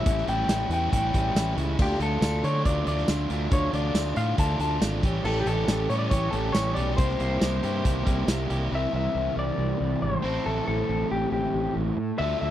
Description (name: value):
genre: indie rock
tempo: 139 BPM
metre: 4/4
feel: straight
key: D harmonic minor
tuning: A4 = 440 Hz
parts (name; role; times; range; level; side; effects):
- electric guitar through a small old amp; melody; 0.0-12.5 s; G4 to A5; -29 LUFS; left 2 dB; harmonic tremolo, slapback echo
- overdriven electric guitar; riff; 0.0-12.5 s; A2 to Bb4; -29 LUFS; right 1 dB; none
- fuzz fingered electric bass; bass; 0.0-12.5 s; G#1 to D3; -28 LUFS; equal; overdrive
- loose indie drum kit; drums; 0.1-8.6 s; crash cymbal, hi-hat, kick drum, snare drum, tambourine; -26 LUFS; equal; none
room: little or no reverb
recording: dry, close 1970s-style studio recording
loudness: -23 LUFS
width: side -12 dB against mid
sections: 0.0-8.7 A section; 8.7-12.5 B section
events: none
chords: 0.0 A7; 1.8 Dm; 5.0 A7; 7.0 C7; 10.2 Am7